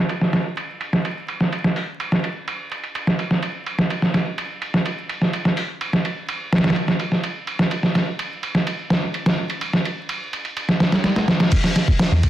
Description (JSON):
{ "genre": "breakbeat, breaks", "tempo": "126 BPM", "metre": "4/4", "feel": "straight", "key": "unclear", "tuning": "A4 = 440 Hz", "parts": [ { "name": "dusty soul sampler-style drum kit", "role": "drums", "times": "0.1-12.3 s", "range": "crash cymbal, hi-hat, kick drum, ride cymbal, snare drum", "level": "-19 LUFS", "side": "right 1 dB", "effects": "overdrive, low-pass filter on kick, low-pass filter on cymbals, low-pass filter on snare, low-pass filter on hats, low-pass filter on room" }, { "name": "hollow-body short-scale picked electric bass", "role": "bass", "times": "12.1-12.2 s", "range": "E2", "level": "-16 LUFS", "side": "equal", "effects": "none" } ], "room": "moderate digital room reverb, RT60 1.1 s", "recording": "dense, heavily limited modern master, vinyl crackle", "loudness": "-19 LUFS", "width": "side -12 dB against mid", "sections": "0.0-11.5 A section", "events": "none", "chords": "none", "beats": "| 0.10 0.57 1.05 1.52 | 2.00 2.48 2.95 3.43 | 3.90 4.38 4.86 5.33 | 5.81 6.29 6.76 7.24 | 7.71 8.19 8.67 9.14 | 9.62 10.10 10.57 11.05 | 11.52 12.00" }